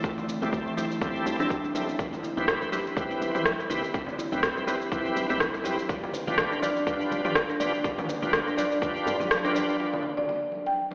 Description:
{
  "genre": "afro house",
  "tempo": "123 BPM",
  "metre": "4/4",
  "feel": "swing 56% on 16ths",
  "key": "unclear",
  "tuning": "A4 = 440 Hz",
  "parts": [
    { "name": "kalimba", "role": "arpeggios", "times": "0.0-9.6 s", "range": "E3 to D5", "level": "-34 LUFS", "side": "equal", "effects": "sidechain pumping, tape echo" },
    { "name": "bright tonewheel organ", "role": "stabs", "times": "0.0-9.8 s", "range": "C4 to B4", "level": "-33 LUFS", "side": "equal", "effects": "overdrive, chorus vibrato, slow rotary speaker, sidechain pumping, tape echo" },
    { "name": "electronic kick drum", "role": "drums", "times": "0.0-8.9 s", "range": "none", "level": "-35 LUFS", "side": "equal", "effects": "none" },
    { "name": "house drum kit", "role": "drums", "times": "0.0-9.8 s", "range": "rim click, shaker, toms", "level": "-32 LUFS", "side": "equal", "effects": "none" },
    { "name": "congas", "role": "percussion", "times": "0.0-10.9 s", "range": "none", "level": "-39 LUFS", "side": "equal", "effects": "none" },
    { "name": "woody FM bass", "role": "bass", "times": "0.4-9.8 s", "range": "D1 to G2", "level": "-39 LUFS", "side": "equal", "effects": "sidechain pumping" },
    { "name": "marimba with medium mallets", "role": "melody", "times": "10.2-10.9 s", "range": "D5 to G5", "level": "-30 LUFS", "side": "equal", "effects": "none" }
  ],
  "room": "wet lush hall reverb, RT60 1.8 s",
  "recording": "played on a big sound system in a bare room, stone room reverb, AM radio sound",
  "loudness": "-28 LUFS",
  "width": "mono",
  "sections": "0.0-9.8 A section; 9.8-10.9 B section",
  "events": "kick drops out 9.3-9.8",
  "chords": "0.0 Am7; 2.0 Cmaj7; 5.9 G7; 9.8 N.C."
}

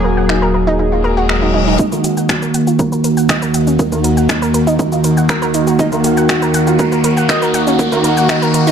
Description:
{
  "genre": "melodic techno",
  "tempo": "120 BPM",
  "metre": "4/4",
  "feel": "straight",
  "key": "Eb minor",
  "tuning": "A4 = 440 Hz",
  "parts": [
    { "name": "evolving wavetable pad", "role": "sustained chords", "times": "0.0-8.7 s", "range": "Eb2 to Gb4", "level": "-18 LUFS", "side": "right 2 dB", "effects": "phaser, built-in reverb, sidechain pumping" },
    { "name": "analog pluck", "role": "arpeggios", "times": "0.0-8.7 s", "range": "Bb3 to Gb5", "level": "-19 LUFS", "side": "right 1 dB", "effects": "chorus, sidechain pumping, digital delay" },
    { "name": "sync-sweep polysynth", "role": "stabs", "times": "0.0-8.7 s", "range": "Eb3 to Ab4", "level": "-15 LUFS", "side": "equal", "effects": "chorus, sidechain pumping, digital delay" },
    { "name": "dark detuned saw bass", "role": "bass", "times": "0.0-1.8 s", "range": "Eb1", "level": "-18 LUFS", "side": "equal", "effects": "sidechain pumping" },
    { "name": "house drum kit", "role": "drums", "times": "0.3-8.7 s", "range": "finger snaps, hi-hat, shaker", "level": "-21 LUFS", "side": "equal", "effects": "overdrive" },
    { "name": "reverse cymbal and riser", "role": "sound effects", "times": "1.0-8.7 s", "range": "none", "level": "-26 LUFS", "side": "left 3 dB", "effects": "none" },
    { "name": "electronic kick drum", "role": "drums", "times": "1.8-8.4 s", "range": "none", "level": "-19 LUFS", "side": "equal", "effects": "high-pass filter on kick" }
  ],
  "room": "moderate lush hall reverb, RT60 1.9 s",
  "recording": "dark, warm production",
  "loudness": "-11 LUFS",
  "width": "side -7 dB against mid",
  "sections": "0.0-1.8 A section; 1.8-8.7 B section",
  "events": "filter sweep on ambient pad 0.0-1.8; reverse cymbal 1.0-1.8; build-up 1.8-8.7; riser 1.8-8.7; filter sweep on synth pluck 1.8-8.7; filter sweep on analog polysynth 1.8-8.7",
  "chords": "0.0 Gbadd9/Eb; 1.8 Ebm"
}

